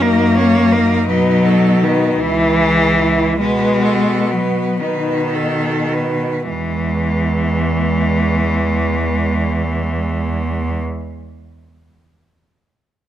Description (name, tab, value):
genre	classical, lyrical piece for cello ensemble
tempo	32-57 BPM (dotted quarters)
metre	6/8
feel	rubato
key	E major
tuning	A4 = 439 Hz
part	rich cello	melody	0.0-10.8 s	G#3 to E4	-24 LUFS	left 5 dB	none
part	clear cello	second line	0.0-10.8 s	G#3 to C#5	-22 LUFS	right 6 dB	none
part	clear cello	accompaniment	0.0-10.8 s	D#3 to A#3	-17 LUFS	left 2 dB	none
part	clear cello	bass	0.0-10.8 s	C#2 to B2	-20 LUFS	right 2 dB	none
room	moderate recital hall reverb, RT60 1.5 s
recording	close, detailed microphones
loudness	-14 LUFS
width	side -11 dB against mid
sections	0.0-6.5 A section; 6.5-12.9 B section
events	slowing down 0.0-6.5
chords	0.0 F#; 1.1 B7; 2.2 C#m; 3.4 B7; 6.5 E